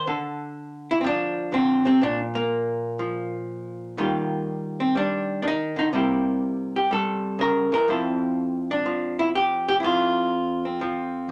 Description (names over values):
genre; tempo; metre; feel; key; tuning
solo jazz; 123 BPM; 4/4; swing 67% on 8ths; F major; A4 = 440 Hz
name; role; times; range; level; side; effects
archtop guitar, miked and amplified; solo; 0.0-11.3 s; F2 to Bb4; -24 LUFS; equal; none
room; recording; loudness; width
wet small room ambience, RT60 0.5 s; none; -24 LUFS; mono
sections
0.0-11.3 A section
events
none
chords
0.1 Dm7; 2.0 Bb5; 4.0 Ebmaj9; 5.9 C7b9; 7.9 Fmaj7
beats
| 0.07 0.56 1.04 1.53 | 2.02 2.51 2.99 3.48 | 3.97 4.46 4.95 5.43 | 5.92 6.41 6.90 7.39 | 7.88 8.36 8.85 9.34 | 9.83 10.31 10.80 11.29